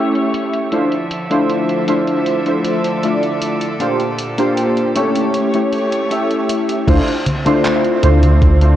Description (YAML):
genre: vaporwave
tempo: 78 BPM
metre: 4/4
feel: straight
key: D minor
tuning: A4 = 440 Hz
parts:
  - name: warbly lo-fi synth keys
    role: accompaniment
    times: 0.0-8.8 s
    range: A3 to E5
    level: -15 LUFS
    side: equal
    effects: lush chorus, analog delay
  - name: bright chamber string section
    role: sustained chords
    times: 0.0-8.8 s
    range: Bb2 to E5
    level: -24 LUFS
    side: right 1 dB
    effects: none
  - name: detuned 8-bit digital drum machine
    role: drums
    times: 0.2-8.8 s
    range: congas, crash cymbal, handclaps, hi-hat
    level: -24 LUFS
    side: equal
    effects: none
  - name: chorused synth bass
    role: bass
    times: 6.9-8.8 s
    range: D2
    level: -10 LUFS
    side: equal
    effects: none
  - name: electronic kick drum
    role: drums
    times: 6.9-8.6 s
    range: none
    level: -15 LUFS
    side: equal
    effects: none
room: light reverb, digital ambience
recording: cassette tape, low-pass filter, nothing above 10.5 kHz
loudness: -14 LUFS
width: side -12 dB against mid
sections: 0.0-6.9 A section; 6.9-8.8 B section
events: none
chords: 0.0 A7; 0.7 Dm9; 3.8 Bb69; 5.3 A7; 6.9 Dm9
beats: | 0.73 1.50 2.26 3.03 | 3.80 4.57 5.34 6.11 | 6.88 7.65 8.42